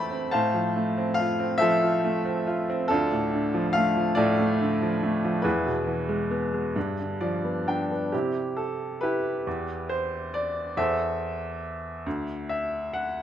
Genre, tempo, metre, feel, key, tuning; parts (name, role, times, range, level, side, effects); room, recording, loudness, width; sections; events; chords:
classical, lyrical solo piano; 46 BPM (dotted quarters); 6/8; rubato; C lydian from 8.1 s; A4 = 437 Hz
clear upright piano; solo; 0.0-13.2 s; D2 to B5; -24 LUFS; equal
moderate scoring stage reverb, RT60 1.8 s; -24 LUFS; side -10 dB against mid
0.0-8.1 A section; 8.1-13.2 B section
upright piano fill 6.8-8.1, 12.1-13.2
0.3 F/A; 2.9 Dm; 5.4 E; 6.8 G7; 8.1 C; 9.5 Em; 10.8 Am/E; 12.1 D5